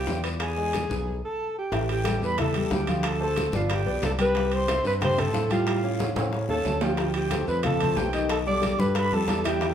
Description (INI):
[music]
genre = Afro-Cuban jazz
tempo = 182 BPM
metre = 4/4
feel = straight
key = A minor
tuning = A4 = 440 Hz
[part]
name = mellow alto saxophone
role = melody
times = 0.0-9.7 s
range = F4 to D5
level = -28 LUFS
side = right 1 dB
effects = none
[part]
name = bright concert flute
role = second line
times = 0.0-9.7 s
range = F5 to D6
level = -33 LUFS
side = right 2 dB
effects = none
[part]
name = warm grand piano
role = accompaniment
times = 0.0-9.7 s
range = D#3 to G5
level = -29 LUFS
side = left 3 dB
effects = none
[part]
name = modern bright fingered electric bass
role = bass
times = 0.0-9.7 s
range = G1 to A2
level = -29 LUFS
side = equal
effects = none
[part]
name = bongos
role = percussion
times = 0.1-9.7 s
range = none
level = -36 LUFS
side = left 4 dB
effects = none
[part]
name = congas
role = percussion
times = 0.1-9.7 s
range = none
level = -34 LUFS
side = left 1 dB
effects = none
[part]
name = guiro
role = percussion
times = 0.1-9.7 s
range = none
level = -42 LUFS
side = left 5 dB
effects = none
[part]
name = timbales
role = percussion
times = 0.2-9.7 s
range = none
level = -34 LUFS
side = right 5 dB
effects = none
[sound]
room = wet large studio reverb, RT60 1.1 s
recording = band playing live in one room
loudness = -23 LUFS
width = side -9 dB against mid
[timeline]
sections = 0.0-1.7 A section; 1.7-9.7 B section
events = stop 1.1-1.7; drum fill 6.0-7.0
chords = 0.4 E; 1.7 A5; 3.0 Dm7; 3.7 G; 4.4 C6; 5.7 Aaug7; 7.0 Dm7; 8.3 B7alt